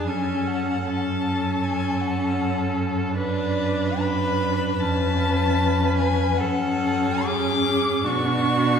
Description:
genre	classical, slow romantic movement for string quartet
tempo	68-79 BPM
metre	4/4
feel	rubato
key	F# minor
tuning	A4 = 440 Hz
part	warm violin	melody	0.0-8.8 s	D5 to D6	-27 LUFS	left 4 dB	none
part	warm violin	second line	0.0-8.8 s	F#4 to B4	-28 LUFS	left 1 dB	none
part	warm viola	accompaniment	0.0-8.8 s	C#4 to D4	-25 LUFS	left 1 dB	none
part	warm cello	bass	0.0-8.8 s	E#2 to B2	-25 LUFS	right 3 dB	none
room	wet concert hall reverb, RT60 2.0 s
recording	heard from further back in the room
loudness	-20 LUFS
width	side -7 dB against mid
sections	0.0-8.8 A section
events	none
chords	0.1 F#m; 3.2 Bm/F#; 4.8 C#7/E#; 6.4 F#m; 8.0 Bm

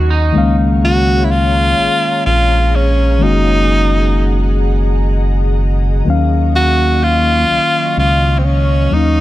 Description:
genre	R&B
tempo	42 BPM (dotted quarters)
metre	6/8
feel	straight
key	Eb minor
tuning	A4 = 438 Hz
part	electric guitar at the edge of break-up	second line	0.0-0.6 s	Eb4	-21 LUFS	right 4 dB	spring reverb, plate reverb
part	mellow tine electric piano	accompaniment	0.0-9.2 s	Eb3 to F5	-18 LUFS	left 4 dB	none
part	ethereal airy pad	sustained chords	0.0-9.2 s	Gb3 to Db6	-24 LUFS	left 2 dB	ensemble chorus, built-in reverb
part	smooth gliding synth bass	bass	0.0-9.2 s	Gb1 to Eb2	-14 LUFS	equal	none
part	clear tenor saxophone	melody	0.8-9.2 s	C4 to Gb4	-15 LUFS	equal	plate reverb, ping-pong delay
room	light reverb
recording	none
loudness	-11 LUFS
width	side -15 dB against mid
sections	0.0-9.2 A section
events	none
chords	0.3 Db6; 3.2 Gb69; 6.1 Ebm9

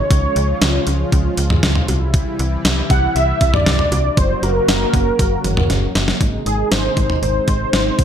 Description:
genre	synth-pop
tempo	118 BPM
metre	4/4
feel	straight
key	Ab mixolydian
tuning	A4 = 442 Hz
part	wide unison lead	melody	0.0-8.0 s	Ab4 to Gb5	-20 LUFS	equal	analog chorus
part	warm analog pad	sustained chords	0.0-8.0 s	C3 to Gb4	-24 LUFS	equal	chorus
part	slap-like FM bass	bass	0.0-8.0 s	Gb1 to Db2	-20 LUFS	equal	none
part	clean 12-bit digital drum machine	drums	0.1-8.0 s	cowbell, hi-hat, kick drum, snare drum, toms	-17 LUFS	equal	overdrive, gated reverb
room	light reverb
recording	bright 1980s-style digital production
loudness	-14 LUFS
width	side -9 dB against mid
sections	0.0-6.2 A section; 6.2-8.0 B section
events	drum fill 5.7-6.2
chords	0.1 Db; 1.9 C; 4.2 Gb; 6.2 Ab

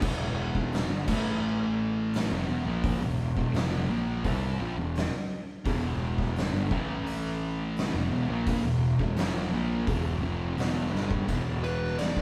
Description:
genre	stoner and doom metal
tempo	85 BPM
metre	4/4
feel	straight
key	E minor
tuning	A4 = 440 Hz
part	thick fuzz guitar	riff	0.0-12.2 s	E2 to C4	-37 LUFS	equal	none
part	thick fuzz guitar	riff	0.0-12.2 s	E2 to C4	-34 LUFS	equal	distortion
part	fuzz picked electric bass	bass	0.0-12.2 s	E1 to C2	-35 LUFS	equal	overdrive, tube saturation
part	oversized low-tuned drum kit	drums	0.0-12.2 s	crash cymbal, hi-hat, kick drum, ride cymbal, snare drum	-34 LUFS	equal	none
part	fuzz lead guitar	melody	11.6-12.2 s	B4 to D5	-35 LUFS	equal	distortion
room	moderate stone room reverb, RT60 1.2 s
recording	band playing live in one room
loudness	-29 LUFS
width	mono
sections	0.0-11.3 A section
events	drum fill 10.9-11.3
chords	0.0 Em; 1.1 A5; 2.3 Em; 6.7 A5; 7.9 Em

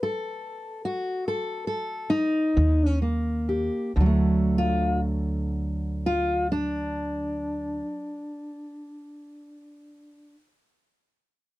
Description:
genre	acoustic country blues, solo or duo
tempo	41-50 BPM (dotted quarters)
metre	12/8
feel	straight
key	D major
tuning	A4 = 440 Hz
part	fingerpicked steel-string acoustic guitar	melody	0.0-10.3 s	D3 to A4	-26 LUFS	equal	none
part	upright bass	bass	2.6-7.8 s	D2 to Eb2	-26 LUFS	equal	none
room	little or no reverb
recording	dry, close 1970s-style studio recording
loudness	-24 LUFS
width	side -17 dB against mid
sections	0.0-4.0 A section; 4.0-9.8 B section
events	slowing down 0.0-4.0; steel-string acoustic guitar solo 0.0-4.0; stop 0.0-2.6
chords	0.0 N.C.; 2.6 Eb; 4.0 D

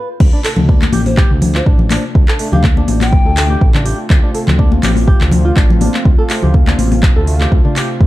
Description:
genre	afro house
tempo	123 BPM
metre	4/4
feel	swing 54% on 16ths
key	D minor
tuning	A4 = 440 Hz
part	flamenco guitar	arpeggios	0.0-7.9 s	A3 to A4	-23 LUFS	right 1 dB	sidechain pumping, digital delay
part	warm analog pad	sustained chords	0.2-8.1 s	C3 to F4	-23 LUFS	right 1 dB	chorus, sidechain pumping
part	smooth synth bass	bass	0.2-8.1 s	A1 to F2	-15 LUFS	equal	sidechain pumping
part	afro-pop drum kit	drums	0.2-7.9 s	crash cymbal, handclaps, hi-hat, toms	-20 LUFS	left 1 dB	small room ambience
part	electronic kick drum	drums	0.2-8.1 s	none	-10 LUFS	equal	overdrive, small room ambience
part	congas	percussion	0.6-7.0 s	none	-17 LUFS	left 4 dB	none
part	mellow hollow polished pan flute	melody	1.1-3.7 s	C5 to G5	-24 LUFS	left 3 dB	digital delay
room	digital ambience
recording	dark, warm production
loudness	-10 LUFS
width	side -16 dB against mid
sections	0.2-8.1 A section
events	break 0.0; drop 0.2-8.1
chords	0.2 Dm7

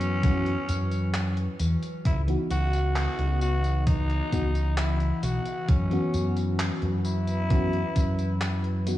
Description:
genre	vaporwave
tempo	66 BPM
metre	4/4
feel	straight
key	unclear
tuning	A4 = 439 Hz
part	growling tenor saxophone	melody	0.0-8.8 s	C#4 to F#4	-33 LUFS	left 1 dB	tape echo
part	FM electric piano with soft pad layer	accompaniment	0.0-9.0 s	E3 to F#4	-32 LUFS	left 1 dB	analog chorus, analog delay
part	warbly tape-like pad	sustained chords	0.0-9.0 s	C#3 to D#5	-36 LUFS	left 2 dB	chorus, built-in reverb, phaser
part	deep dub fingered electric bass	bass	0.0-9.0 s	B1 to F#2	-26 LUFS	equal	none
part	gated 80s digital drum machine	drums	0.0-9.0 s	handclaps, hi-hat, tambourine	-36 LUFS	equal	gated reverb
part	electronic kick drum	drums	0.2-8.1 s	none	-24 LUFS	equal	none
room	light reverb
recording	cassette tape, small room ambience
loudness	-24 LUFS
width	side -14 dB against mid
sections	0.0-9.0 A section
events	none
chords	0.0 F#7sus4; 2.1 C#m11; 5.7 F#7sus4

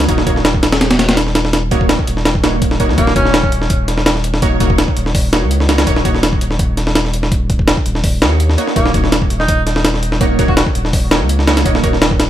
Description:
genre	drum and bass, jungle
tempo	166 BPM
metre	4/4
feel	straight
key	Eb minor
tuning	A4 = 440 Hz
part	orchestra-hit-like synth stab	stabs	0.0-11.9 s	Bb3 to Db5	-20 LUFS	right 2 dB	built-in reverb, dub echo
part	saturated sub bass	bass	0.0-12.3 s	Eb1 to Eb2	-17 LUFS	equal	none
part	breakbeat sampler-style drum kit	drums	0.0-12.3 s	hi-hat, kick drum, snare drum	-14 LUFS	equal	none
part	bright tenor saxophone	melody	3.0-3.5, 8.8-10.6 s	Bb3 to Gb4	-22 LUFS	equal	dub echo
room	little or no reverb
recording	none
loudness	-11 LUFS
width	side -12 dB against mid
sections	0.0-12.3 A section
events	none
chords	0.0 Ebm7

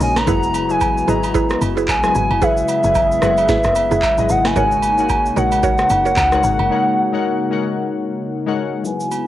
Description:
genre	amapiano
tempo	112 BPM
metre	4/4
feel	swing 58% on 16ths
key	unclear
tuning	A4 = 443 Hz
part	hollow clarinet-like synth lead	melody	0.0-9.3 s	E5 to A#5	-17 LUFS	equal	chorus, low-pass filter
part	warm analog keys	accompaniment	0.0-9.3 s	F#3 to G#5	-23 LUFS	left 7 dB	chorus, low-pass filter, cassette tape
part	hollow soft pad	sustained chords	0.0-9.3 s	C#3 to G#4	-24 LUFS	left 1 dB	chorus, sidechain pumping, low-pass filter, cassette tape
part	woody log drum bass	bass	0.0-6.7 s	F#1 to C#2	-23 LUFS	equal	none
part	booming analog drum machine	drums	0.0-9.3 s	handclaps, hi-hat, kick drum, rim click, shaker, snare drum	-22 LUFS	equal	overdrive, cassette tape
part	agogo bells and woodblock	percussion	0.2-9.3 s	none	-30 LUFS	right 9 dB	none
part	mallet-like synth pluck	stabs	0.3-6.2 s	E4 to C#5	-23 LUFS	right 6 dB	chorus, cassette tape, analog delay
room	light reverb, digital ambience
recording	home recording on cassette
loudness	-14 LUFS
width	side -13 dB against mid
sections	0.0-8.8 A section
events	drop 0.0-8.8; break 6.7-8.8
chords	0.3 F#9sus4; 4.6 G#9sus4

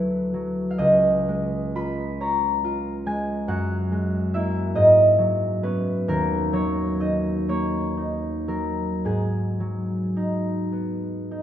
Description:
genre	classical, solo harp piece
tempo	33-48 BPM (dotted quarters)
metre	6/8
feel	rubato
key	G# dorian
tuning	A4 = 440 Hz
part	concert harp	solo	0.0-11.4 s	C#2 to B5	-21 LUFS	equal	none
room	wet concert hall reverb, RT60 2.3 s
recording	none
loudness	-21 LUFS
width	side -10 dB against mid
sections	0.0-11.4 A section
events	none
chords	0.0 D69; 0.8 C#add9; 3.5 F#9; 4.8 G#m11; 6.1 D#m7; 9.0 G#m7

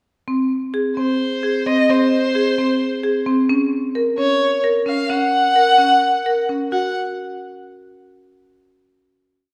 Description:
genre	contemporary instrumental, contemporary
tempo	261 BPM (eighths)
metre	7/8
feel	straight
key	Gb lydian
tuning	A4 = 440 Hz
part	marimba with hard mallets	arpeggios	0.3-6.9 s	C4 to Bb4	-21 LUFS	equal	none
part	rich violin	melody	1.0-6.9 s	C5 to Gb5	-20 LUFS	equal	none
room	wet scoring stage reverb, RT60 1.9 s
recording	recorded in a church or concert hall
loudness	-18 LUFS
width	mono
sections	0.3-6.7 A section; 6.7-8.3 final note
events	none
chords	0.3 Ab; 3.5 Gb; 6.7 N.C.

